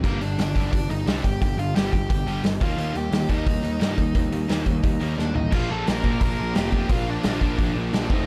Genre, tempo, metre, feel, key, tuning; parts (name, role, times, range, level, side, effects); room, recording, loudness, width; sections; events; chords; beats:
punk rock; 175 BPM; 4/4; straight; A4 = 439 Hz
dark smooth lead guitar; melody; 0.0-8.3 s; Bb3 to Bb5; -33 LUFS; equal; overdrive, delay
raw garage guitar; riff; 0.0-8.3 s; F2 to Eb4; -33 LUFS; equal; overdrive
tight distorted guitar; riff; 0.0-8.3 s; F2 to F4; -35 LUFS; equal; distortion
fuzz picked electric bass; bass; 0.0-8.2 s; F1 to Bb2; -30 LUFS; equal; overdrive
loose indie drum kit; drums; 0.0-8.2 s; crash cymbal, hi-hat, kick drum, snare drum, toms; -26 LUFS; equal
raw garage guitar; riff; 5.5-8.3 s; F2 to D4; -35 LUFS; equal
light reverb; -23 LUFS; mono
0.0-5.5 A section; 5.5-8.3 B section
drum fill 5.2-5.5
0.0 G5; 2.6 Eb; 5.5 Bb
| 0.04 0.38 0.72 1.06 | 1.41 1.75 2.09 2.44 | 2.78 3.12 3.46 3.81 | 4.15 4.49 4.83 5.18 | 5.52 5.86 6.21 6.55 | 6.89 7.24 7.58 7.92